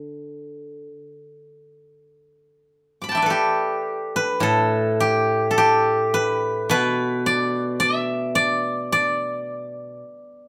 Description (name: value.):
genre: chinese traditional, Chinese solo plucked strings.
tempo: 45-56 BPM.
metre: 4/4.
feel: rubato.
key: D zhi mode.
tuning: A4 = 440 Hz.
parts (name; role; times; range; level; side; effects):
steel-string zither; solo; 0.0-10.5 s; A2 to D6; -22 LUFS; equal; none.
room: moderate studio reverb, RT60 0.8 s.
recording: band playing live in one room.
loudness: -21 LUFS.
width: mono.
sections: 0.0-2.1 A section; 2.1-10.5 B section.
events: none.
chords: none.